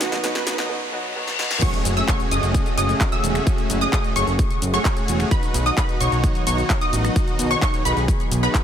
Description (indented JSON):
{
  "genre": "EDM, festival progressive house",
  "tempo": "130 BPM",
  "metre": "4/4",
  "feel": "straight",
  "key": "unclear",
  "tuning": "A4 = 435 Hz",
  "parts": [
    { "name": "warm grand piano", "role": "accompaniment", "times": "0.0-1.6 s", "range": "B2 to F#4", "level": "-31 LUFS", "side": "right 2 dB", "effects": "sidechain pumping, ping-pong delay" },
    { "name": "lush unison pad", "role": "sustained chords", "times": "0.0-8.6 s", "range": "C#3 to G#4", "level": "-30 LUFS", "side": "equal", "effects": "chorus, sidechain pumping" },
    { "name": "dense compressed supersaw", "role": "riff", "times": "0.0-8.6 s", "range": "A3 to E5", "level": "-26 LUFS", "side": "equal", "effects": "cassette tape, sidechain pumping, ping-pong delay" },
    { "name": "fat analog bass", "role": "bass", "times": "0.0-8.5 s", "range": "E1 to B1", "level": "-23 LUFS", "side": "equal", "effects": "sidechain pumping, high-pass filter" },
    { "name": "big-room dance drum kit", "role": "drums", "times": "0.0-8.6 s", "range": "crash cymbal, finger snaps, handclaps, hi-hat, shaker, snare drum", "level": "-28 LUFS", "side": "left 1 dB", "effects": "none" },
    { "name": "riser, reverse cymbal and impact", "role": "sound effects", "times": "0.0-3.5 s", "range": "none", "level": "-29 LUFS", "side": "left 2 dB", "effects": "none" },
    { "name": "wide unison pluck", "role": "arpeggios", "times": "1.6-8.6 s", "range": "B5 to E6", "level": "-26 LUFS", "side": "equal", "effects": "analog chorus, sidechain pumping, ping-pong delay" },
    { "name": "electronic kick drum", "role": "drums", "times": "1.6-8.6 s", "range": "none", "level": "-21 LUFS", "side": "equal", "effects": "none" }
  ],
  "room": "light reverb, digital ambience",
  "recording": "high-pass filter",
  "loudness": "-18 LUFS",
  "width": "side -9 dB against mid",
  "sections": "0.0-1.6 A section; 1.6-8.6 B section",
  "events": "build-up 0.0-1.6; drum fill 0.0-0.7, 1.3-1.6; riser 0.0-1.6; filter sweep 0.0-1.6; reverse cymbal 0.7-1.6; drop 1.6-8.6; impact 1.6-3.5",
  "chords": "0.0 B; 1.6 F#madd9; 5.3 B"
}